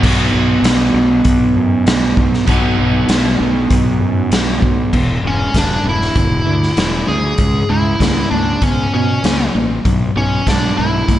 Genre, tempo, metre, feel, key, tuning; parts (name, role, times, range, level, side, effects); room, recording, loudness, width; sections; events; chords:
classic rock; 98 BPM; 4/4; straight; E mixolydian from 4.9 s; A4 = 440 Hz
crunchy overdriven guitar; riff; 0.0-11.2 s; E2 to F#4; -17 LUFS; right 2 dB; spring reverb
fuzz fingered electric bass; bass; 0.0-11.2 s; E1 to B2; -19 LUFS; equal; overdrive
raw garage drum kit; drums; 0.0-11.2 s; crash cymbal, hi-hat, kick drum, snare drum; -16 LUFS; equal
smooth overdriven lead guitar; melody; 5.3-11.2 s; C#4 to G#4; -19 LUFS; left 1 dB
light reverb, studio ambience; nothing above 10.9 kHz; -12 LUFS; side -12 dB against mid
0.0-4.9 A section; 4.9-11.2 B section
0.0 B; 4.9 E5; 7.4 C#m; 9.9 Bsus4